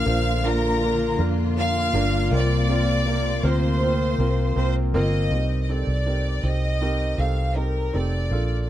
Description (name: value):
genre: pop ballad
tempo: 80 BPM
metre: 4/4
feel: straight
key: unclear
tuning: A4 = 436 Hz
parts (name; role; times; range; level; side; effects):
- clear studio violin section; melody; 0.0-8.7 s; Bb4 to F6; -27 LUFS; equal; none
- clear concert grand piano; accompaniment; 0.0-8.7 s; G2 to C5; -28 LUFS; right 3 dB; none
- rich studio string section; sustained chords; 0.0-5.3 s; C3 to F4; -29 LUFS; left 2 dB; none
- fingerpicked plugged-in steel-string acoustic guitar; arpeggios; 0.0-5.9 s; Bb2 to Bb4; -31 LUFS; left 14 dB; none
- vintage muted fingered electric bass; bass; 0.0-8.7 s; F1 to F2; -23 LUFS; equal; none
room: little or no reverb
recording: dry, close 1970s-style studio recording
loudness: -20 LUFS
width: side -12 dB against mid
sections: 0.0-5.3 A section; 5.3-8.7 B section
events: none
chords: 0.0 Bb; 5.3 Cm7